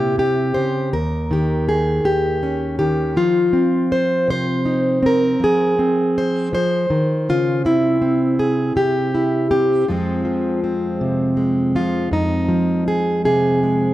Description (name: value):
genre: folk, solo fingerstyle acoustic guitar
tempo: 54 BPM (dotted quarters)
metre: 6/8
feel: straight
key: F minor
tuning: A4 = 441 Hz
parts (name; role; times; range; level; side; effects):
- fingerpicked plugged-in steel-string acoustic guitar; solo; 0.0-13.9 s; Eb2 to C5; -16 LUFS; equal; none
room: moderate large studio reverb, RT60 1.4 s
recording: none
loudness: -16 LUFS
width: side -15 dB against mid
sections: 0.0-12.1 A section; 12.1-13.9 A section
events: none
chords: 0.0 C7; 0.9 Eb7; 3.2 Fm7; 7.6 C; 9.9 Fm